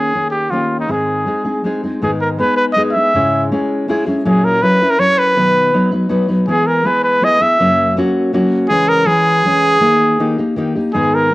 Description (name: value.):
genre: mexican folk.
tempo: 161 BPM.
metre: 3/4.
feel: straight.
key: G# minor.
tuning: A4 = 441 Hz.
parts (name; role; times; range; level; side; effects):
clear trumpet; melody; 0.0-11.3 s; Eb4 to E5; -13 LUFS; right 1 dB; none.
nylon-string guitar; accompaniment; 0.0-11.3 s; F#2 to B4; -16 LUFS; left 1 dB; cassette tape.
room: light reverb, studio reverb.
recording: home recording on cassette.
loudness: -12 LUFS.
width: side -19 dB against mid.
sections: 0.0-2.0 A section; 2.0-11.3 B section.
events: none.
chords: 0.0 Eb7sus4; 0.5 Eb7; 0.9 Ab; 2.0 G#m; 3.1 C#m/G#; 4.2 F#7/A#; 5.4 B; 6.5 E; 7.6 F#; 8.7 C#m; 9.8 D#sus4; 10.2 D#.